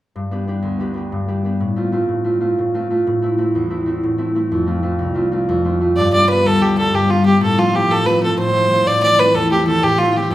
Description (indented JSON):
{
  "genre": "celtic folk",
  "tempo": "124 BPM (dotted quarters)",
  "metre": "9/8",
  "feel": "straight",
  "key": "G mixolydian",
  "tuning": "A4 = 441 Hz",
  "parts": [
    { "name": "concert harp", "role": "accompaniment", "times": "0.2-10.3 s", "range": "C2 to G4", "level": "-17 LUFS", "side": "equal", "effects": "none" },
    { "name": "rich fiddle", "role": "melody", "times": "6.0-10.3 s", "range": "F4 to D5", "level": "-15 LUFS", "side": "right 1 dB", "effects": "none" }
  ],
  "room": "wet large studio reverb, RT60 0.9 s",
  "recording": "band playing live in one room",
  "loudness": "-14 LUFS",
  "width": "side -14 dB against mid",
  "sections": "0.2-6.0 A section; 6.0-10.3 B section",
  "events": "none",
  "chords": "0.2 G; 1.6 F/A; 3.1 Am; 4.5 F; 6.0 G; 7.4 F/A; 8.9 Am",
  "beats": "| 0.15 0.64 1.12 | 1.61 2.09 2.58 | 3.06 3.55 4.03 | 4.52 5.00 5.48 | 5.97 6.45 6.93 | 7.42 7.90 8.38 | 8.86 9.34 9.83 | 10.31"
}